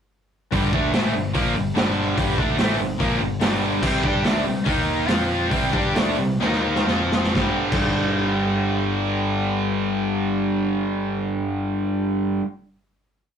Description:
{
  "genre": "hard rock",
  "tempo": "122-145 BPM",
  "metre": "4/4",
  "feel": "straight",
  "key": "G minor",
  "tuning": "A4 = 440 Hz",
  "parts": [
    { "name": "crunchy overdriven guitar", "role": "riff", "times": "0.5-12.5 s", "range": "G2 to G4", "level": "-26 LUFS", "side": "left 5 dB", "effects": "none" },
    { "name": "distorted electric guitar", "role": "riff", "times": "0.5-12.4 s", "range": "G2 to G4", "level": "-26 LUFS", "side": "right 5 dB", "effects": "overdrive" },
    { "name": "distorted electric guitar", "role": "riff", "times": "0.5-12.5 s", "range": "G2 to G4", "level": "-26 LUFS", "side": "equal", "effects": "distortion" },
    { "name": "modern bright picked electric bass", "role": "bass", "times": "0.5-12.4 s", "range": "G1 to G2", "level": "-30 LUFS", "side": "equal", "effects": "none" },
    { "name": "raw garage drum kit", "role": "drums", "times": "0.5-7.9 s", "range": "crash cymbal, hi-hat, kick drum, snare drum", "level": "-23 LUFS", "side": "equal", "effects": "none" }
  ],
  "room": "moderate studio reverb, RT60 0.5 s",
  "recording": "rough rehearsal-room recording, tube saturation, faint mains hum",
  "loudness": "-19 LUFS",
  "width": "side -8 dB against mid",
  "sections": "0.5-7.4 riff; 7.4-11.3 final chord",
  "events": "slowing down 3.8-7.4; drum fill 6.4-7.4",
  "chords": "0.5 Gm; 3.8 C5; 4.7 Eb5; 5.1 F5; 5.5 C5; 6.4 Eb5; 6.9 F5; 7.4 G5",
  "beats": "| 0.52 0.93 1.34 1.76 | 2.17 2.59 3.00 3.41 | 3.83 4.24 4.66 5.08 | 5.52 5.96 6.41 6.88 | 7.36 7.85 8.34 8.82 | 9.31 9.80 10.29 10.79"
}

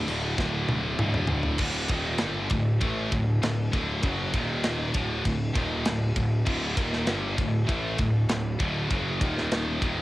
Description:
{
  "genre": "heavy metal",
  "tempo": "99 BPM",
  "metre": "4/4",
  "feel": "straight",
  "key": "unclear",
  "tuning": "A4 = 440 Hz",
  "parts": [
    { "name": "marimba with medium hard mallets", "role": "melody", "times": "0.0-1.0 s", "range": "none", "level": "barely audible", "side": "none", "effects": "none" },
    { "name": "scooped high-gain guitar", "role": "riff", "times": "0.0-10.0 s", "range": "D2 to A3", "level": "-27 LUFS", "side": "equal", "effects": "distortion" },
    { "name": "fuzz picked electric bass", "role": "bass", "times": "0.0-10.0 s", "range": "D1 to A1", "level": "-32 LUFS", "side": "equal", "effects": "overdrive" },
    { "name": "tight metal drum kit", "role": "drums", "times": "0.1-10.0 s", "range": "crash cymbal, kick drum, ride cymbal, snare drum, toms", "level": "-29 LUFS", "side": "equal", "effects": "none" }
  ],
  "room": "little or no reverb",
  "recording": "home recording on cassette",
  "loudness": "-24 LUFS",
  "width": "side -17 dB against mid",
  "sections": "0.0-1.6 A section; 1.6-10.0 B section",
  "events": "drum fill 0.4-1.6",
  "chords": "0.0 D5; 1.6 D; 4.3 Eb5; 4.9 D; 9.2 Eb5",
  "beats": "0.38 0.99 | 1.60 2.21 2.82 3.42 | 4.03 4.64 5.25 5.86 | 6.47 7.07 7.68 8.29 | 8.90 9.51"
}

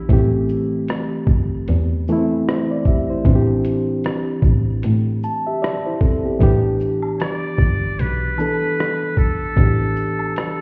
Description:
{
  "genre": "lo-fi hip hop",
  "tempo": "76 BPM",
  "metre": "4/4",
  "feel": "swing 58% on 16ths",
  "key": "A minor",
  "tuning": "A4 = 438 Hz",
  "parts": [
    { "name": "barky reed electric piano", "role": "accompaniment", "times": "0.0-10.6 s", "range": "E3 to A5", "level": "-23 LUFS", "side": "equal", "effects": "overdrive, cassette tape, low-pass filter" },
    { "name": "warm double bass", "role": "bass", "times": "0.1-10.3 s", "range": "G1 to A2", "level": "-22 LUFS", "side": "equal", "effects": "none" },
    { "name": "lo-fi sampler-style drum kit", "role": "drums", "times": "0.1-10.6 s", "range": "hi-hat, kick drum, rim click, shaker", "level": "-22 LUFS", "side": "equal", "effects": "overdrive" },
    { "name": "egg shaker and woodblock", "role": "percussion", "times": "6.4-10.6 s", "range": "none", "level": "-38 LUFS", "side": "equal", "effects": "none" },
    { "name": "trumpet with metal mute", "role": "melody", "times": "7.2-10.6 s", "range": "A4 to D5", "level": "-28 LUFS", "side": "equal", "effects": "low-pass filter" }
  ],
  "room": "light reverb, small room ambience",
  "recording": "heard muffled through a wall, stone room reverb, EQ",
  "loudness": "-19 LUFS",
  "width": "mono",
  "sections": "0.0-10.6 A section",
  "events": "reed electric piano fill 4.8-6.4",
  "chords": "0.1 Am7; 3.2 D9sus4/A; 6.4 Em7",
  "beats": "| 0.09 0.88 1.67 2.46 | 3.25 4.04 4.83 5.62 | 6.41 7.20 7.99 8.78 | 9.57 10.36"
}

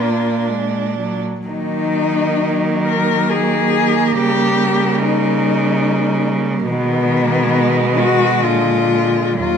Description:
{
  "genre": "classical, lyrical piece for cello ensemble",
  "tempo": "59-74 BPM",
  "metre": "3/4",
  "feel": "rubato",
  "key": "Eb minor",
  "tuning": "A4 = 440 Hz",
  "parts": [
    { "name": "rich cello", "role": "melody", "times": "0.0-9.6 s", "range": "Cb4 to Bb4", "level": "-18 LUFS", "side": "left 7 dB", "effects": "none" },
    { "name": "rich cello", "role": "second line", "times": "0.0-9.6 s", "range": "Gb3 to D4", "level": "-20 LUFS", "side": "right 8 dB", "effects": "none" },
    { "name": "warm cello", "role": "accompaniment", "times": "0.0-9.6 s", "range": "D3 to Bb3", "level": "-22 LUFS", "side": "left 2 dB", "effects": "none" },
    { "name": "clear cello", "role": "bass", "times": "0.0-9.6 s", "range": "Eb2 to Eb3", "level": "-20 LUFS", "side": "right 2 dB", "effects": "none" }
  ],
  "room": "moderate recital hall reverb, RT60 1.6 s",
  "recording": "minimal, uncompressed stereo recording",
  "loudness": "-14 LUFS",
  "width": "side -7 dB against mid",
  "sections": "0.0-9.6 A section",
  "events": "none",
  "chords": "0.0 Bb; 1.5 Ebm; 4.2 Eb7/Db; 6.7 Abm/Cb; 8.4 Bb7",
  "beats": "0.49 | 1.47 2.40 3.30 | 4.19 5.03 5.86 | 6.68 7.55 8.43 | 9.40"
}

